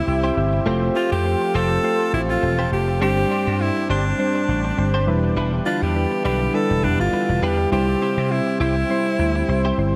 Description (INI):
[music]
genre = pop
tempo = 102 BPM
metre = 4/4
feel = swing 55% on 16ths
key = C major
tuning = A4 = 443 Hz
[part]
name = bright alto saxophone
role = melody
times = 0.0-9.7 s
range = D4 to A4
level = -26 LUFS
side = equal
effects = shimmer reverb, digital delay
[part]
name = soft electric-piano-like synth keys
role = accompaniment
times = 0.0-10.0 s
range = G2 to E5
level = -25 LUFS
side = equal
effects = chorus, shimmer reverb
[part]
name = sweeping resonant pad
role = sustained chords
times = 0.0-10.0 s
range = C3 to A4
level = -33 LUFS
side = equal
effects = chorus, shimmer reverb
[part]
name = direct-recorded clean electric guitar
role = riff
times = 0.1-9.8 s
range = G3 to C5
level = -33 LUFS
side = equal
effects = analog chorus, shimmer reverb, digital delay
[part]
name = vintage slap bass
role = bass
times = 0.1-10.0 s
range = E1 to C3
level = -24 LUFS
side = equal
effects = none
[sound]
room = moderate lush hall reverb, RT60 3.1 s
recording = none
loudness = -20 LUFS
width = mono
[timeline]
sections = 0.0-10.0 A section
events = none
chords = 0.0 C; 0.7 Fadd9; 3.0 Gsus4; 5.1 Em7; 7.7 C